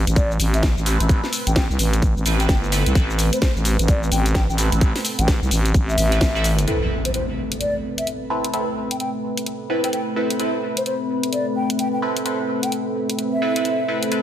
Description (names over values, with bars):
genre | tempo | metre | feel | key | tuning
bass house | 129 BPM | 4/4 | swing 61% on 16ths | A minor | A4 = 437 Hz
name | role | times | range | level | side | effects
dark analog pad | sustained chords | 0.0-14.2 s | A3 to E5 | -28 LUFS | right 2 dB | chorus, sidechain pumping
growling FM bass | bass | 0.0-6.7 s | G1 to C2 | -20 LUFS | equal | tube saturation, sidechain pumping
garage drum kit | drums | 0.1-14.2 s | hi-hat, shaker, snare drum | -25 LUFS | left 1 dB | none
mellow hollow concert flute | melody | 0.2-14.0 s | C5 to G5 | -28 LUFS | left 1 dB | digital delay
electronic kick drum | drums | 0.2-6.3 s | none | -18 LUFS | equal | none
band-passed chord stab | stabs | 0.9-14.2 s | C4 to B4 | -26 LUFS | right 1 dB | phaser, wide subtle chorus, sidechain pumping, digital delay
impact | sound effects | 6.7-8.5 s | none | -27 LUFS | equal | none
warbly tape-like pad | texture | 6.7-14.2 s | C4 to B5 | -28 LUFS | left 2 dB | chorus, built-in reverb, sidechain pumping
room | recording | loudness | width
light reverb | dense, heavily limited modern master | -18 LUFS | side -11 dB against mid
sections
0.0-6.7 A section; 6.7-14.2 B section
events
impact 6.7-8.5; filter sweep on synth stab 6.7-14.2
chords
0.0 Amadd9